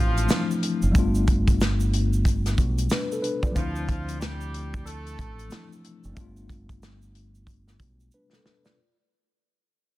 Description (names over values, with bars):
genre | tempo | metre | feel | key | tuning
hip hop, boom-bap hip-hop | 92 BPM | 4/4 | swing 61% on 16ths | unclear | A4 = 440 Hz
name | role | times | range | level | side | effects
mellow tine electric piano | accompaniment | 0.0-9.0 s | E3 to D5 | -28 LUFS | left 2 dB | medium stereo tremolo, cassette tape, high-pass filter, low-pass filter
warm horn section | stabs | 0.0-5.7 s | F3 to A4 | -36 LUFS | right 1 dB | high-pass filter, low-pass filter, ping-pong delay
deep dub fingered electric bass | bass | 0.0-8.1 s | F#1 to D2 | -26 LUFS | equal | none
warm soul drum kit | drums | 0.2-8.8 s | hi-hat, kick drum, snare drum | -24 LUFS | equal | none
tube shaker | percussion | 0.2-8.8 s | none | -44 LUFS | right 5 dB | none
room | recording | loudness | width
small room ambience | dense, heavily limited modern master | -22 LUFS | side -17 dB against mid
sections
0.0-8.8 A section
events
fade-out 0.0-8.8; drum fill 8.1-8.8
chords
0.0 Dm9; 0.9 G7; 3.6 Dm9; 6.2 G7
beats
0.30 | 0.95 1.60 2.25 2.90 | 3.56 4.21 4.86 5.51 | 6.17 6.82 7.47 8.12